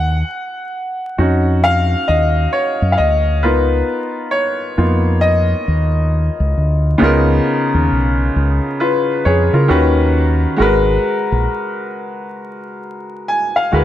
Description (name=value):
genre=R&B, neo-soul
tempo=67 BPM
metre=4/4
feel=swing 62% on 16ths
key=unclear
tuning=A4 = 441 Hz
part: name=bright upright piano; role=accompaniment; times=0.0-13.8 s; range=C#3 to G#5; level=-16 LUFS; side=left 1 dB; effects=none
part: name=deep dub fingered electric bass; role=bass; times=0.0-13.8 s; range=G#1 to C#3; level=-15 LUFS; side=equal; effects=none
room=light reverb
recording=vinyl crackle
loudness=-13 LUFS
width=side -12 dB against mid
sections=0.0-7.0 A section; 7.0-13.8 B section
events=upright piano solo 0.0-7.0; upright piano fill 12.8-13.8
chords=0.0 D#m7; 3.4 C#13; 9.7 D#7alt; 10.6 G#m9